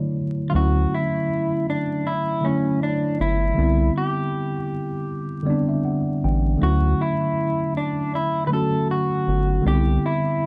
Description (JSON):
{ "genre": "lo-fi hip hop", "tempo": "79 BPM", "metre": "4/4", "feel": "swing 55% on 16ths", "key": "D major", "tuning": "A4 = 440 Hz", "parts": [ { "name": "electric guitar through a small old amp", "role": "melody", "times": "0.0-10.5 s", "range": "C#4 to B4", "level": "-27 LUFS", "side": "equal", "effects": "low-pass filter" }, { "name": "mellow tine electric piano", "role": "accompaniment", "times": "0.0-10.5 s", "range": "D3 to G5", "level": "-25 LUFS", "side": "equal", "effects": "cassette tape, low-pass filter" }, { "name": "round analog bass", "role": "bass", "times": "0.5-10.0 s", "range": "G1 to D2", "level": "-22 LUFS", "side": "equal", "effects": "none" } ], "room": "moderate studio reverb, RT60 0.6 s", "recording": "dark, warm production, vinyl crackle, nothing above 10.6 kHz", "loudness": "-22 LUFS", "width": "mono", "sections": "0.5-10.5 A section", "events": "break 0.0-0.5", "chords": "0.0 Dmaj9; 3.6 Cmaj9; 6.6 Dmaj9; 9.7 Cmaj9" }